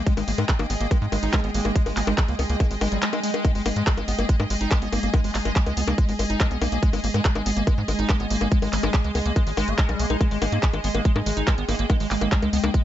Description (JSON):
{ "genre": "psychedelic trance", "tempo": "142 BPM", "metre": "4/4", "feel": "straight", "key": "unclear", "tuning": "A4 = 439 Hz", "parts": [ { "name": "pulsing gated texture", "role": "sustained chords", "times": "0.0-12.8 s", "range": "G#3", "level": "-29 LUFS", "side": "equal", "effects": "chorus, built-in reverb, sidechain pumping" }, { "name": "liquid acid bass", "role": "riff", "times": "0.0-12.8 s", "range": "G3 to D#4", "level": "-30 LUFS", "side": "moving between left 8 dB and right 7 dB", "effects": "chorus, auto-pan, cassette tape, sidechain pumping, digital delay" }, { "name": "tight sequencer bass", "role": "bass", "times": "0.0-12.7 s", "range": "G#1 to G#2", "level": "-26 LUFS", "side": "equal", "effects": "none" }, { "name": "clear symphonic string section", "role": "texture", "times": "0.0-12.8 s", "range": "G#4 to G#5", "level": "-32 LUFS", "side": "equal", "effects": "sidechain pumping" }, { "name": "drum and bass drum kit", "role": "drums", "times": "0.1-12.8 s", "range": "bongos, handclaps, hi-hat", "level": "-28 LUFS", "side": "left 2 dB", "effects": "none" }, { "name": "electronic kick drum", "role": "drums", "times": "0.1-12.8 s", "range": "none", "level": "-20 LUFS", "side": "equal", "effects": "none" } ], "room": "little or no reverb", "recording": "nothing above 7.8 kHz", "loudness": "-20 LUFS", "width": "side -12 dB against mid", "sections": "0.0-12.8 A section", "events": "none", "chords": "0.0 G#5" }